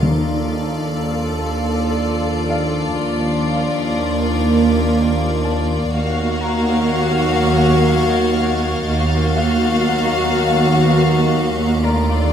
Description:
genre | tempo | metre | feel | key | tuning
cinematic | 61 BPM | 3/4 | straight | Eb hungarian minor | A4 = 440 Hz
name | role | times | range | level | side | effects
warm symphonic violin section | melody | 0.0-12.3 s | D5 to F5 | -25 LUFS | left 6 dB | none
warm symphonic violin section | second line | 0.0-12.3 s | F4 to Gb4 | -25 LUFS | equal | none
dark symphonic viola section | accompaniment | 0.0-12.3 s | A3 to A4 | -23 LUFS | right 1 dB | none
icy glass pad | sustained chords | 0.0-12.3 s | Bb4 to Bb5 | -28 LUFS | equal | chorus, built-in reverb
warm French horn section | sustained chords | 0.0-12.3 s | D3 to Gb4 | -24 LUFS | left 4 dB | none
rich symphonic cello section | bass | 0.0-12.3 s | Eb2 | -21 LUFS | right 2 dB | none
warm symphonic double bass section | bass | 0.0-12.3 s | Eb2 | -22 LUFS | right 3 dB | none
timpani | percussion | 0.0-1.5 s | Eb3 | -21 LUFS | left 2 dB | none
bright baby grand piano | texture | 0.0-12.3 s | Gb4 to Bb5 | -31 LUFS | left 2 dB | none
warm studio violin section | texture | 5.9-12.3 s | A5 to A6 | -32 LUFS | left 1 dB | none
room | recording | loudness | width
light reverb | close, detailed microphones | -15 LUFS | side -8 dB against mid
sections
0.0-12.3 A section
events
none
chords
0.0 Dm/Eb; 5.9 Ebmadd9

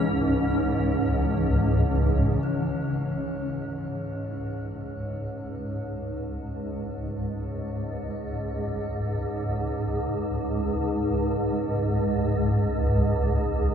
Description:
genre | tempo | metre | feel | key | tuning
dark ambient drone | free time | none | none | C# minor | A4 = 439 Hz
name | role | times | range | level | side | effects
granular cloud pad | sustained chords | 0.0-2.4 s | C#3 to C#4 | -28 LUFS | left 1 dB | built-in reverb, shimmer reverb
swarming drone | drone | 0.0-13.7 s | C#2 to G#2 | -25 LUFS | equal | built-in reverb
bronze singing bowl | texture | 0.0-13.7 s | C#4 to C#5 | -41 LUFS | equal | shimmer reverb
room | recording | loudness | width
wet huge ambient reverb, RT60 9.2 s | in a vast, echoing space | -24 LUFS | side -8 dB against mid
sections
0.0-2.4 A section; 2.4-13.7 B section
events
fade-in on synth drone 2.4-13.7; fade-in on singing bowl 2.4-13.7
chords
0.0 C#m; 2.4 C#5

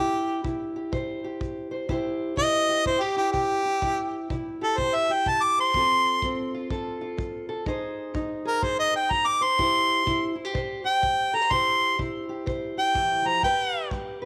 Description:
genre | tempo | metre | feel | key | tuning
acoustic country blues, solo or duo | 125 BPM | 4/4 | swing 64% on 8ths | C major | A4 = 440 Hz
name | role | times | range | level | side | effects
warm harmonica | melody | 0.0-13.9 s | G4 to D6 | -25 LUFS | equal | none
fingerpicked steel-string acoustic guitar | accompaniment | 0.0-14.3 s | C3 to C5 | -33 LUFS | equal | none
kick drum | drums | 0.4-14.1 s | none | -38 LUFS | equal | none
room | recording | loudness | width
moderate echo chamber reverb, RT60 1.8 s, small room reverb | none | -25 LUFS | mono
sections
0.0-14.3 A section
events
harmonica solo 0.0-14.3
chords
0.0 C; 5.7 F; 7.7 Fm7; 9.6 C; 13.4 G

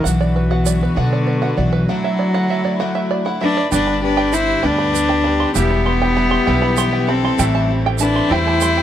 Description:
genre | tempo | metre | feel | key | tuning
indie folk with a building arrangement | 66 BPM (dotted quarters) | 6/8 | straight | G major | A4 = 441 Hz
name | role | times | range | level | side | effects
rich cello | melody | 0.0-8.8 s | D3 to E4 | -18 LUFS | equal | none
picked twelve-string acoustic guitar | accompaniment | 0.0-8.8 s | E2 to G4 | -25 LUFS | left 7 dB | none
dark chamber string section | sustained chords | 0.0-8.8 s | D3 to G4 | -28 LUFS | left 3 dB | none
open-back banjo | arpeggios | 0.0-8.8 s | B4 to C6 | -24 LUFS | right 8 dB | none
upright bass | bass | 0.0-8.8 s | E1 to B2 | -20 LUFS | equal | none
egg shaker | percussion | 0.1-0.8, 3.7-8.7 s | none | -26 LUFS | right 24 dB | none
rich fiddle | second line | 3.4-8.8 s | G4 to C5 | -24 LUFS | left 17 dB | none
bright grand piano | accompaniment | 3.7-8.8 s | G1 to E5 | -26 LUFS | right 11 dB | none
room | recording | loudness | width
little or no reverb | dry, close 1970s-style studio recording | -14 LUFS | side -11 dB against mid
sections
0.0-3.7 A section; 3.7-8.8 B section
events
none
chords
0.1 Bm; 1.9 Dadd9; 3.7 G; 5.6 Em; 7.4 Am7

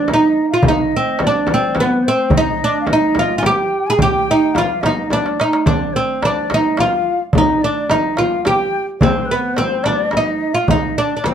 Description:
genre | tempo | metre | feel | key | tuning
Arabic maqam ensemble | 108 BPM | 3/4 | straight | unclear | A4 = 440 Hz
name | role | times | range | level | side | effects
oud | melody | 0.0-11.3 s | B3 to Ab4 | -16 LUFS | right 2 dB | none
breathy ney | second line | 0.0-11.3 s | B4 to B5 | -22 LUFS | left 4 dB | none
darbuka | percussion | 0.1-11.3 s | none | -22 LUFS | right 3 dB | none
frame drum | percussion | 0.1-11.3 s | none | -21 LUFS | left 2 dB | none
room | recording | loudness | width
moderate studio reverb, RT60 0.6 s | dark, warm production | -14 LUFS | side -8 dB against mid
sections
0.0-11.3 A section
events
drum fill 5.1-5.7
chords
none

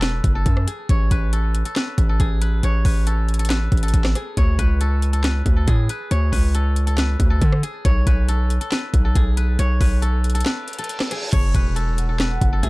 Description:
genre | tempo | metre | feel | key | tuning
hip hop, trap | 138 BPM | 4/4 | half-time | unclear | A4 = 440 Hz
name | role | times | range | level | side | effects
steel-string zither | melody | 0.0-12.7 s | G#4 to C#5 | -28 LUFS | left 1 dB | low-pass filter, analog delay
distorted 808-style bass | bass | 0.0-12.7 s | E1 to D3 | -19 LUFS | equal | distortion
trap drum kit | drums | 0.0-12.7 s | crash cymbal, handclaps, hi-hat, kick drum, rim click, snare drum | -20 LUFS | equal | none
reverse cymbal and impact | sound effects | 10.6-12.7 s | none | -32 LUFS | equal | none
warm velvety synth lead | second line | 12.0-12.7 s | E5 to F#5 | -32 LUFS | right 2 dB | chorus
room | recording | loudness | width
digital ambience | echo-heavy mix | -17 LUFS | side -22 dB against mid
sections
0.0-11.3 A section; 11.3-12.7 B section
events
break 10.5-11.3; reverse cymbal 10.6-11.3; impact 11.3-12.7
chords
0.0 F#5; 0.9 Amaj9; 4.4 D5; 7.8 Amaj9/B; 11.3 F#5

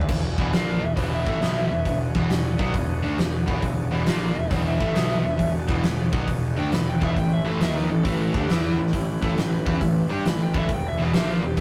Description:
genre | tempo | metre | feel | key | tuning
blues rock power trio and southern rock | 136 BPM | 4/4 | swing 67% on 8ths | E mixolydian | A4 = 441 Hz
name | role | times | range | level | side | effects
overdriven slide guitar | melody | 0.0-11.6 s | E4 to B5 | -33 LUFS | equal | none
overdriven tonewheel organ | sustained chords | 0.0-11.6 s | C#4 to D5 | -41 LUFS | equal | none
fuzz picked electric bass | bass | 0.0-11.6 s | E1 to G2 | -29 LUFS | equal | overdrive
huge arena drum kit | drums | 0.0-11.6 s | crash cymbal, hi-hat, kick drum, snare drum, toms | -28 LUFS | equal | none
biting overdriven guitar | riff | 0.1-11.6 s | E2 to G4 | -28 LUFS | equal | none
room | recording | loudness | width
light reverb | rough rehearsal-room recording, tube saturation | -23 LUFS | mono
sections
0.1-11.6 A section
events
none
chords
0.1 E7; 7.2 A7; 10.7 E7

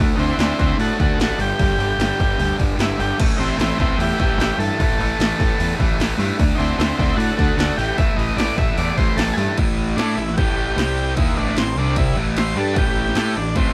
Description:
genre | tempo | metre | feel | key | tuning
garage rock duo or trio | 150 BPM | 4/4 | straight | A dorian, A minor from 9.6 s | A4 = 441 Hz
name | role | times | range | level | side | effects
fuzz guitar | riff | 0.0-13.7 s | G2 to A4 | -26 LUFS | equal | distortion
fuzz picked electric bass | bass | 0.0-13.7 s | G1 to A2 | -25 LUFS | equal | overdrive
combo organ | melody | 0.2-13.7 s | C4 to E5 | -26 LUFS | equal | none
punchy analog drum machine | drums | 0.2-13.7 s | crash cymbal, hi-hat, kick drum, snare drum | -24 LUFS | equal | none
room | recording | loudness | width
moderate studio reverb, RT60 0.9 s | band playing live in one room | -19 LUFS | mono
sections
0.0-9.6 A section; 9.6-13.7 B section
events
transistor combo organ solo 9.6-13.7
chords
0.0 D; 1.4 G5; 3.2 A5; 6.4 D; 7.8 A5; 10.8 C5; 11.2 A5; 11.8 C5; 12.2 A5

